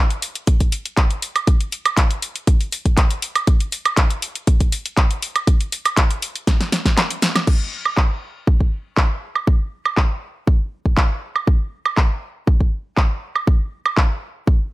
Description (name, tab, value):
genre	house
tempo	120 BPM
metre	4/4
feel	straight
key	none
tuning	none
part	house drum kit	drums	0.1-14.1 s	crash cymbal, handclaps, hi-hat, snare drum, woodblock	-20 LUFS	right 1 dB	studio reverb
part	electronic kick drum	drums	0.5-14.6 s	none	-16 LUFS	equal	studio reverb
room	digital ambience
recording	none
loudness	-17 LUFS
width	side -18 dB against mid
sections	0.0-7.5 A section; 7.5-14.7 B section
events	drum fill 6.5-7.5; kick drops out 7.0-7.5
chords	none